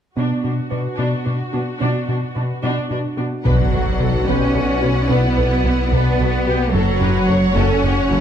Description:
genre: cinematic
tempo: 73 BPM (dotted quarters)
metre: 6/8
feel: straight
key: B minor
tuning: A4 = 443 Hz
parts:
  - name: rich symphonic viola section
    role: accompaniment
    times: 0.2-8.2 s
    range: D4 to C#5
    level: -26 LUFS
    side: right 2 dB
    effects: none
  - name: harp-like synth pluck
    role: arpeggios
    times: 0.2-8.2 s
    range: F#3 to B4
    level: -28 LUFS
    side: right 2 dB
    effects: chorus, digital delay
  - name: round analog bass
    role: riff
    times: 0.2-8.2 s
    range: F#2 to B3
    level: -23 LUFS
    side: left 3 dB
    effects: none
  - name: rich symphonic cello section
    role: bass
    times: 0.2-8.2 s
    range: B2 to C#4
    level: -22 LUFS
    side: right 1 dB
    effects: none
  - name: warm symphonic violin section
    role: second line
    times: 3.4-8.2 s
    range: G4 to D5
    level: -26 LUFS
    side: left 2 dB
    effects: none
  - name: clear symphonic violin section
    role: melody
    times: 3.5-8.2 s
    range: F#5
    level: -29 LUFS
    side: left 3 dB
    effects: none
  - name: dark French horn section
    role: sustained chords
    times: 3.5-8.2 s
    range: F#4 to C#5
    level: -29 LUFS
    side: left 3 dB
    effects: none
  - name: clear symphonic double bass section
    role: bass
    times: 3.5-8.2 s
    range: F#1 to B1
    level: -23 LUFS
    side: right 3 dB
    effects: none
  - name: swelling detuned saw bass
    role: bass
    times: 3.5-8.2 s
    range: F#1 to B1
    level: -22 LUFS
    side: equal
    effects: none
  - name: impact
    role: sound effects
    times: 3.5-5.1 s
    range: none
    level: -24 LUFS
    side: equal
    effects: none
room: wet recital hall reverb, RT60 1.6 s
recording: dark, warm production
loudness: -16 LUFS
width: side -9 dB against mid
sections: 0.2-3.5 A section; 3.5-8.2 B section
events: impact 3.5-5.1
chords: 0.2 Bm; 6.7 F#m

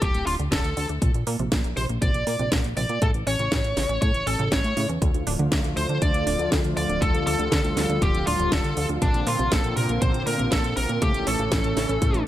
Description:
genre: italo disco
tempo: 120 BPM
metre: 4/4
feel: straight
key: D minor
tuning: A4 = 441 Hz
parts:
  - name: smooth overdriven lead guitar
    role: melody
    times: 0.0-12.2 s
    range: D4 to D5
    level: -27 LUFS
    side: equal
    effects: ping-pong delay
  - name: wide unison pluck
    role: arpeggios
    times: 0.0-12.1 s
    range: C3 to D4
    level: -32 LUFS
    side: right 3 dB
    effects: cassette tape, tape echo
  - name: fat analog bass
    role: bass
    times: 0.0-12.2 s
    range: D1 to Bb2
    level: -27 LUFS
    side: equal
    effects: none
  - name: electronic kick drum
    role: drums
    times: 0.0-12.1 s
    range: none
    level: -24 LUFS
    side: equal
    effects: none
  - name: house drum kit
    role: drums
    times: 0.0-12.2 s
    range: hi-hat, snare drum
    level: -29 LUFS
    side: equal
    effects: none
  - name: warm analog pad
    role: sustained chords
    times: 5.0-12.3 s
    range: D3 to A4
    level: -29 LUFS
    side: left 1 dB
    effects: chorus
room: light reverb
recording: none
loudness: -21 LUFS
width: side -13 dB against mid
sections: 0.0-12.3 A section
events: none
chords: 0.0 D5; 1.0 Bbadd9; 3.0 A; 5.0 Dm; 9.0 Bbadd9; 11.0 A

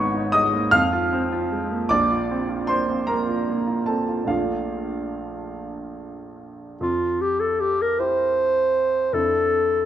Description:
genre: classical, impressionist duo for clarinet and grand piano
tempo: 47-53 BPM (dotted quarters)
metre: 6/8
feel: rubato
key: F major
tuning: A4 = 441 Hz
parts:
  - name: warm grand piano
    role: accompaniment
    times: 0.0-9.9 s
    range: Ab1 to F6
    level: -22 LUFS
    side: right 1 dB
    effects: none
  - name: mellow clarinet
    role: melody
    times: 6.8-9.9 s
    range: F4 to C5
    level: -19 LUFS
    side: equal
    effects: none
room: moderate recital hall reverb, RT60 1.6 s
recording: none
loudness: -20 LUFS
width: side -11 dB against mid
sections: 0.0-6.8 A section; 6.8-9.9 B section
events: none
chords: 0.0 Abmadd9; 0.7 Fm; 1.9 Bbadd9; 4.3 Bbmaj7; 6.8 Fsus2; 9.1 Dmadd9/F

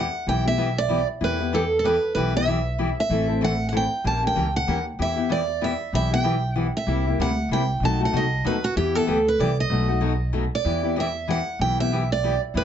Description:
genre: acoustic string swing (jazz manouche)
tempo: 191 BPM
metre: 3/4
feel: swing 58% on 8ths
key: E minor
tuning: A4 = 440 Hz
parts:
  - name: picked steel-string acoustic guitar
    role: melody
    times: 0.0-12.6 s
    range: F#4 to A5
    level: -24 LUFS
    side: right 3 dB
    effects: none
  - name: picked steel-string acoustic guitar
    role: accompaniment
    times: 0.0-12.6 s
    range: B2 to A#4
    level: -26 LUFS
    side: left 4 dB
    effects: none
  - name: upright bass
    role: bass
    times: 0.0-12.6 s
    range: A1 to E2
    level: -26 LUFS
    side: right 1 dB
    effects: none
room: light reverb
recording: nothing above 7.9 kHz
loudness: -20 LUFS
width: side -9 dB against mid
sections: 0.0-10.7 A section; 10.7-12.6 A section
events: none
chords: 0.0 Em; 3.1 Am; 4.0 A#dim7; 5.0 Em; 6.9 C7; 7.8 B7b9; 8.8 Em; 9.7 B7; 10.7 Em

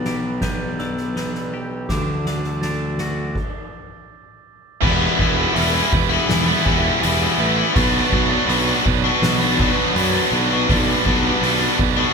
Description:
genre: post-rock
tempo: 82 BPM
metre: 4/4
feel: straight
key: E minor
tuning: A4 = 441 Hz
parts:
  - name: hollow soft pad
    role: sustained chords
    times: 0.0-12.1 s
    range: F#4 to B5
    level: -30 LUFS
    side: right 1 dB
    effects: chorus
  - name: glockenspiel with soft plastic mallets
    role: arpeggios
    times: 0.0-3.4 s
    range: D6 to A6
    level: -34 LUFS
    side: right 7 dB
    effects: none
  - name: twelve-string electric guitar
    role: arpeggios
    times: 0.0-3.4 s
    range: D3 to G4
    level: -30 LUFS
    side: left 6 dB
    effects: spring reverb
  - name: fuzz fingered electric bass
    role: bass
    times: 0.0-12.0 s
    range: E1 to F#2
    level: -23 LUFS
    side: right 1 dB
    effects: overdrive
  - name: soft-mallet drum kit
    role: drums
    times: 0.0-12.0 s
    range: crash cymbal, hi-hat, kick drum, snare drum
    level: -24 LUFS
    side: equal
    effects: none
  - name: distorted electric guitar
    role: riff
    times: 4.8-12.1 s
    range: B2 to E4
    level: -20 LUFS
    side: left 8 dB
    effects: overdrive
  - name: tight distorted guitar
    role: riff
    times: 4.8-12.1 s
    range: B2 to E4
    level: -20 LUFS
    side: right 8 dB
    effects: distortion
room: moderate large studio reverb, RT60 1.3 s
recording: band playing live in one room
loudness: -16 LUFS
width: side -5 dB against mid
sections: 0.0-4.8 A section; 4.8-12.1 B section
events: stop 3.4-4.8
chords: 0.0 G/B; 1.9 D; 4.8 Em; 7.8 Bm; 10.7 G/B

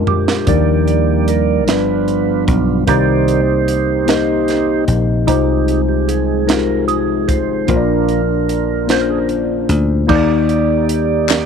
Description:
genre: slow gospel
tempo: 50 BPM (dotted quarters)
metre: 6/8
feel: straight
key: Eb major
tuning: A4 = 441 Hz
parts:
  - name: mellow tine electric piano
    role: accompaniment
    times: 0.0-11.5 s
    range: G2 to Eb5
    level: -17 LUFS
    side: left 10 dB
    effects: slow stereo tremolo
  - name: mellow French horn section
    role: sustained chords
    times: 0.0-11.5 s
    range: D3 to D5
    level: -25 LUFS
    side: right 13 dB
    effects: none
  - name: percussive tonewheel organ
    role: sustained chords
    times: 0.0-11.5 s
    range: Eb3 to D5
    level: -18 LUFS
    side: right 12 dB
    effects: fast rotary speaker
  - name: crisp fusion drum kit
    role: drums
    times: 0.1-11.5 s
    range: crash cymbal, hi-hat, kick drum, snare drum, toms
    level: -19 LUFS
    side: right 3 dB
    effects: none
  - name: dry thumbed slap bass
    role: bass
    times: 0.5-11.5 s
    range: G1 to Eb2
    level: -18 LUFS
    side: equal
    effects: none
  - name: group handclap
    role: percussion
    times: 11.3-11.5 s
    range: none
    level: -19 LUFS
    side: left 14 dB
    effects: none
room: light reverb, studio reverb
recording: 1960s-style stereo with parts hard left and right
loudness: -13 LUFS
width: side -6 dB against mid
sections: 0.0-10.1 A section; 10.1-11.5 A section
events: drum fill 0.0-0.5; tonewheel organ solo 0.0-10.1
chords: 0.5 Ebmaj7; 1.7 G7; 2.9 Cm7; 5.3 Fm7/C; 7.7 Bb; 10.1 Ebmaj7

